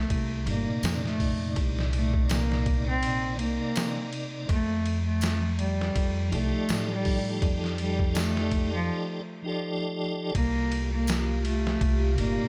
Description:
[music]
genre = trip hop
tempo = 82 BPM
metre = 4/4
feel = swing 56% on 16ths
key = C dorian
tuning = A4 = 439 Hz
[part]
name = dark cello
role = melody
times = 0.0-12.5 s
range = F3 to C4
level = -33 LUFS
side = equal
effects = tape echo
[part]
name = upright bass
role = bass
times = 0.0-12.4 s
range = G1 to A2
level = -31 LUFS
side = equal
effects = none
[part]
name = trip hop sampler-style drum kit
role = drums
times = 0.1-12.4 s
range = hi-hat, kick drum, ride cymbal, snare drum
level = -33 LUFS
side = equal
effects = vintage 12-bit sampler grit
[part]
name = tonewheel organ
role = accompaniment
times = 0.4-12.5 s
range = Bb2 to D5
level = -35 LUFS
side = equal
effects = chorus vibrato, tremolo
[part]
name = tambourine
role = percussion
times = 0.8-11.2 s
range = none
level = -43 LUFS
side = equal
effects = none
[part]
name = warbly tape-like pad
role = sustained chords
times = 10.7-12.5 s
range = G4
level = -38 LUFS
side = equal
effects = chorus, built-in reverb, vintage 12-bit sampler grit
[part]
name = wind-like tuned noise texture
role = texture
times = 10.6-12.5 s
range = F4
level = -44 LUFS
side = equal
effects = built-in reverb
[sound]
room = little or no reverb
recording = none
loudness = -28 LUFS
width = mono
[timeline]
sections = 0.0-10.3 A section; 10.3-12.5 B section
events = filter sweep on tonewheel organ 0.0-10.3; break 8.9-10.3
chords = 0.0 Cm9; 4.5 F13; 10.3 Cm9

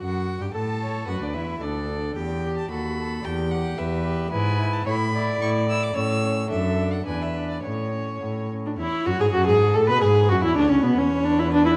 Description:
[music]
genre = quick classical-period movement for string quartet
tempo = 110 BPM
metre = 2/4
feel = rubato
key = A major from 4.3 s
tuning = A4 = 440 Hz
[part]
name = rich violin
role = melody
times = 0.0-11.8 s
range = A4 to E6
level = -36 LUFS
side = equal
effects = none
[part]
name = warm violin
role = second line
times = 0.0-11.8 s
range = B3 to B4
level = -33 LUFS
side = equal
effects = none
[part]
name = rich cello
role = bass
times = 0.0-11.8 s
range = C#2 to B2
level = -28 LUFS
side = equal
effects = none
[part]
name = warm viola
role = accompaniment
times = 0.5-11.7 s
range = B3 to D5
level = -26 LUFS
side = equal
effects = none
[sound]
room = wet recital hall reverb, RT60 1.9 s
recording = dark, warm production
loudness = -23 LUFS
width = mono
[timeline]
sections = 0.0-8.8 A section; 8.8-11.8 B section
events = none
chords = 0.0 N.C.; 0.5 A; 1.1 D; 2.2 Em; 2.7 B7/D#; 3.2 Em; 4.3 E/G#; 4.9 A; 6.5 D/F#; 7.1 E5; 7.7 A; 9.9 F#sus24; 10.4 C#m7; 11.0 E5

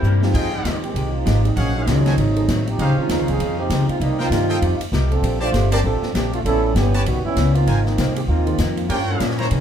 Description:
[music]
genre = jazz, big band swing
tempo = 196 BPM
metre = 4/4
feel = swing 60% on 8ths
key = F minor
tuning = A4 = 441 Hz
[part]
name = archtop guitar, miked and amplified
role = accompaniment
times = 0.0-9.6 s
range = G2 to G4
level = -30 LUFS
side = left 3 dB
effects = none
[part]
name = warm baby grand piano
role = accompaniment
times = 0.0-5.7, 8.5-8.6 s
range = D3 to Ab4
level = -27 LUFS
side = right 3 dB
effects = none
[part]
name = upright bass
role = bass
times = 0.0-9.6 s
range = G1 to C3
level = -19 LUFS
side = equal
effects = none
[part]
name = swinging big-band drum kit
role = drums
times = 0.0-9.6 s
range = crash cymbal, hi-hat, kick drum, ride cymbal, snare drum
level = -27 LUFS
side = left 2 dB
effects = none
[part]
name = warm trombone section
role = second line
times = 0.2-9.6 s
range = Eb3 to C5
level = -23 LUFS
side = right 3 dB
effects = none
[part]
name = brilliant trumpet section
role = stabs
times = 0.3-9.5 s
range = Db4 to Bb5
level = -27 LUFS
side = equal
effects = none
[sound]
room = wet club reverb, RT60 0.6 s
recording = heard from further back in the room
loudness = -17 LUFS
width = side -9 dB against mid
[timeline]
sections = 0.3-9.6 A section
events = drum fill 0.0-0.3; trombone section solo 0.3-9.6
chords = 0.3 Fm9; 1.6 Ebm11; 2.2 Ab7b9; 2.8 Dbmaj9; 4.0 Cm7; 4.6 F9; 5.2 Bbmaj13; 6.5 A9; 7.7 Ab69; 8.9 Gm7b5

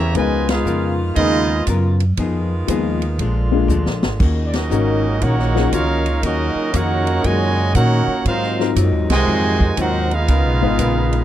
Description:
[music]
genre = jazz, big band swing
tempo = 118 BPM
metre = 4/4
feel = swing 66% on 8ths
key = Db major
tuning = A4 = 440 Hz
[part]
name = clear trumpet section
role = melody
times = 0.0-11.2 s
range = Cb4 to Bb5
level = -22 LUFS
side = right 2 dB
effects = none
[part]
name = brilliant trombone section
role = second line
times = 0.0-11.2 s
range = Bb2 to Gb4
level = -23 LUFS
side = right 4 dB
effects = none
[part]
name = bright saxophone section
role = sustained chords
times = 0.0-11.2 s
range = Bb2 to Cb5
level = -28 LUFS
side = right 1 dB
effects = none
[part]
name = upright bass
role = bass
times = 0.0-11.2 s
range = Ab1 to Bb2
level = -19 LUFS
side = right 1 dB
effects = none
[part]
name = archtop guitar, miked and amplified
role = accompaniment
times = 0.1-11.2 s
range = Ab2 to Bb4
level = -24 LUFS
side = left 5 dB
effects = none
[part]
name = swinging big-band drum kit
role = drums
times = 0.1-11.2 s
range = crash cymbal, hi-hat, kick drum, ride cymbal, snare drum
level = -21 LUFS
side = equal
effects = none
[part]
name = warm upright piano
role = accompaniment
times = 0.2-11.2 s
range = Gb3 to Cb5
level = -22 LUFS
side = left 15 dB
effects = none
[sound]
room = little or no reverb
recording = dry, close 1970s-style studio recording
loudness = -15 LUFS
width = side -12 dB against mid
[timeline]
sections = 0.0-11.2 A section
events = band accent 0.4, 4.5, 9.0; drum fill 3.7-4.2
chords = 0.2 Db13; 2.2 Fm7b5; 3.2 Bb7; 4.2 Ebm7; 8.3 Ab13; 10.3 Db13

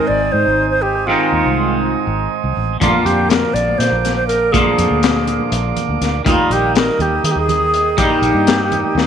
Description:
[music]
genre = psychedelic rock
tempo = 244 BPM (eighths)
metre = 7/8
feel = straight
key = unclear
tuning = A4 = 443 Hz
[part]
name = bright alto flute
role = melody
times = 0.0-9.1 s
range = F4 to D5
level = -17 LUFS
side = right 1 dB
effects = slapback echo
[part]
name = combo organ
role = sustained chords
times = 0.0-9.1 s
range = Bb4 to Eb6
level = -23 LUFS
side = right 14 dB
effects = none
[part]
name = twangy electric guitar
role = riff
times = 0.0-9.1 s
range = Ab2 to F4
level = -18 LUFS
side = equal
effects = phaser
[part]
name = fingered electric bass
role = bass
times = 0.1-9.1 s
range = Ab1 to Eb3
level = -21 LUFS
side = equal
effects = none
[part]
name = crunchy breakbeat drum kit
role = drums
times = 2.8-9.1 s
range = hi-hat, kick drum, snare drum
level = -19 LUFS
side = left 5 dB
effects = none
[part]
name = congas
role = percussion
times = 2.8-9.0 s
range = none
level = -27 LUFS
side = right 12 dB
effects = none
[sound]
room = light reverb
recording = 1960s-style stereo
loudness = -13 LUFS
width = side -8 dB against mid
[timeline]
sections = 0.0-9.1 A section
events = none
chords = 0.0 Ab; 2.8 Bb; 6.3 Eb

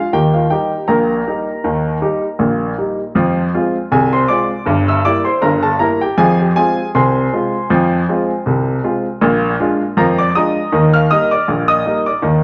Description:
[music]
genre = ragtime piano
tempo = 79 BPM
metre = 2/4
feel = swing 55% on 16ths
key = Eb major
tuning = A4 = 440 Hz
[part]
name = warm baby grand piano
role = solo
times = 0.0-12.4 s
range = G1 to F6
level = -15 LUFS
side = equal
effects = none
[sound]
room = wet large studio reverb, RT60 1.3 s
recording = nothing above 10.5 kHz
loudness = -15 LUFS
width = mono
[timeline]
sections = 0.0-12.4 A section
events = none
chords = 0.1 Eb; 3.2 Fm; 4.7 Edim/G; 6.2 Fm; 9.2 Bb7; 10.7 Eb

